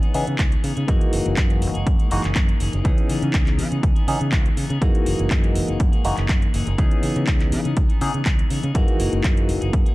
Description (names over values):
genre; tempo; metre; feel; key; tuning
filtered disco house; 122 BPM; 4/4; straight; F# mixolydian; A4 = 440 Hz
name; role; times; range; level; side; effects
barky tine electric piano; accompaniment; 0.0-9.9 s; E3 to G#4; -26 LUFS; left 1 dB; medium stereo tremolo, phaser, sidechain pumping
clean electric guitar; riff; 0.0-9.9 s; E3 to G#4; -30 LUFS; left 3 dB; vibrato effect, sidechain pumping
house drum kit; drums; 0.0-9.9 s; handclaps, hi-hat; -30 LUFS; equal; overdrive, sidechain pumping on hats, sidechain pumping on cymbals
fingered electric bass; bass; 0.1-9.8 s; F#1 to C#3; -24 LUFS; equal; sidechain pumping
electronic kick drum; drums; 0.4-9.8 s; none; -19 LUFS; equal; overdrive
room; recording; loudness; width
digital ambience; dark, warm production; -18 LUFS; side -19 dB against mid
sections
0.0-9.9 A section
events
none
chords
0.0 C#m9; 0.9 F#13; 2.9 C#m9; 4.8 F#13; 6.8 C#m9; 8.8 F#13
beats
0.39 | 0.88 1.38 1.87 2.36 | 2.85 3.34 3.83 4.33 | 4.82 5.31 5.80 6.29 | 6.79 7.28 7.77 8.26 | 8.75 9.24 9.74